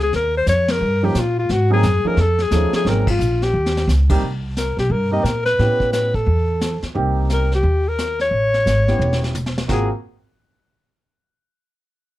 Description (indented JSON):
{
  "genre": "jazz, small-group swing and bop",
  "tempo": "176 BPM",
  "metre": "4/4",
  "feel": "swing 62% on 8ths",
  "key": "unclear",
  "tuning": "A4 = 440 Hz",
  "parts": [
    { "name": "breathy alto saxophone", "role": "melody", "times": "0.0-9.9 s", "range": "F4 to Eb5", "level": "-20 LUFS", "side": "left 2 dB", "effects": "none" },
    { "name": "upright bass", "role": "bass", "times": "0.0-9.9 s", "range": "E1 to Bb2", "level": "-19 LUFS", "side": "equal", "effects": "none" },
    { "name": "vintage brush drum kit", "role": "drums", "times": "0.0-9.8 s", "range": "brushed snare drum, crash cymbal, hi-hat, kick drum, ride cymbal, snare drum, toms", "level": "-26 LUFS", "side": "equal", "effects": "none" },
    { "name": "warm upright piano", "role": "accompaniment", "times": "1.0-9.9 s", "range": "F3 to A4", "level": "-23 LUFS", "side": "right 3 dB", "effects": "none" }
  ],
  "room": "light reverb",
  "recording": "dark, warm production",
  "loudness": "-16 LUFS",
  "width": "side -15 dB against mid",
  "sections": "0.0-4.2 A section; 4.2-9.7 B section; 9.7-11.1 C section",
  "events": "band accent 0.6, 3.0; drum fill 3.5-3.9, 9.0-9.7",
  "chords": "0.1 Ebadd9; 1.5 Ab9; 2.2 F7alt; 2.9 Ab9; 3.5 Eb7; 4.2 C7(no3); 5.6 A7; 7.0 Cm7; 8.3 A7; 9.7 Ab13"
}